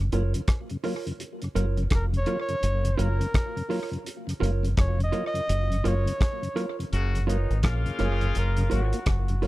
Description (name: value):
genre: roots reggae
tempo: 84 BPM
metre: 4/4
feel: swing 63% on 16ths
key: F# major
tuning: A4 = 437 Hz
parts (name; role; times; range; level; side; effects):
- mellow tonewheel organ; accompaniment; 0.0-9.5 s; F#2 to E#4; -33 LUFS; left 2 dB; slow rotary speaker, tape echo
- deep dub fingered electric bass; bass; 0.0-9.5 s; E#1 to A#1; -25 LUFS; equal; none
- mellow electric guitar; accompaniment; 0.1-9.5 s; E#4 to C#5; -33 LUFS; right 6 dB; tape echo
- cloth-damped thuddy drum kit; drums; 0.1-9.5 s; hi-hat, kick drum, rim click; -28 LUFS; equal; none
- warm flugelhorn; melody; 1.9-9.5 s; F#4 to D#5; -32 LUFS; equal; tape echo
- clear horn section; second line; 6.9-8.9 s; C#3 to F#4; -33 LUFS; left 4 dB; tape echo
room: little or no reverb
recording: dry, close 1970s-style studio recording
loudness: -24 LUFS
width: side -18 dB against mid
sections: 0.0-6.9 A section; 6.9-9.5 B section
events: flugelhorn solo 0.0-6.9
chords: 0.0 F#maj7